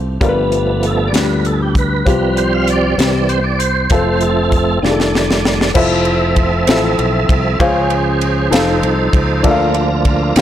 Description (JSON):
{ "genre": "slow gospel", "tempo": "65 BPM (dotted quarters)", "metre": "6/8", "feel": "straight", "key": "F major", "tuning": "A4 = 436 Hz", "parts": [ { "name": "dark baby grand piano", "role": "accompaniment", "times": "0.0-10.4 s", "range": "G2 to F5", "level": "-18 LUFS", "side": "left 4 dB", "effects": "none" }, { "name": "fingered electric bass", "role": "bass", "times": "0.0-10.4 s", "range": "F1 to Eb2", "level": "-19 LUFS", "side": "equal", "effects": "none" }, { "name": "tonewheel organ", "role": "sustained chords", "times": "0.2-10.4 s", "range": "Eb3 to F5", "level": "-17 LUFS", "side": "right 3 dB", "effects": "slow rotary speaker, chorus vibrato" }, { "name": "tight funk drum kit", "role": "drums", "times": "0.2-10.4 s", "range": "crash cymbal, hi-hat, kick drum, ride cymbal, snare drum", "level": "-17 LUFS", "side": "equal", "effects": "soft clipping on snare" } ], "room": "light reverb, small room reverb", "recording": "blown-out, overdriven recording, overdrive", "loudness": "-12 LUFS", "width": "side -11 dB against mid", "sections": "0.0-5.8 A section; 5.8-10.4 B section", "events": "tonewheel organ solo 0.0-5.8; drum fill 4.8-5.8", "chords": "0.2 G7; 2.1 Csus4; 3.0 C; 3.9 F; 4.8 F13; 5.8 Fmaj7; 7.6 Dbmaj7; 8.5 F7; 9.4 Bbmaj7/D" }